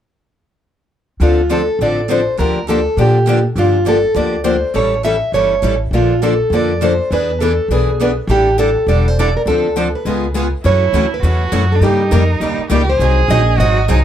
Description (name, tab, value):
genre	acoustic string swing (jazz manouche)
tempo	204 BPM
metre	4/4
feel	swing 60% on 8ths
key	D minor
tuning	A4 = 440 Hz
part	picked plugged-in steel-string acoustic guitar	melody	1.2-14.0 s	F4 to E5	-16 LUFS	right 1 dB	none
part	picked steel-string acoustic guitar	accompaniment	1.2-14.0 s	C#3 to A4	-20 LUFS	left 5 dB	none
part	picked steel-string acoustic guitar	accompaniment	1.2-14.0 s	C#3 to B4	-23 LUFS	right 6 dB	none
part	upright bass	bass	1.2-14.0 s	E1 to Bb2	-16 LUFS	equal	none
part	warm violin	second line	10.6-14.0 s	D4 to G#4	-21 LUFS	right 4 dB	none
room	light reverb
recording	dark, warm production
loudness	-12 LUFS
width	side -10 dB against mid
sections	1.2-10.6 A section; 10.6-14.0 B section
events	none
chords	1.2 Dm7; 2.4 Bb6/D; 3.6 Gm9; 4.7 A7; 5.9 Bbmaj7; 7.1 E7; 8.3 A7sus4; 9.5 Dm7; 10.1 C#7; 10.6 F#m7; 11.8 D#7; 13.0 G#7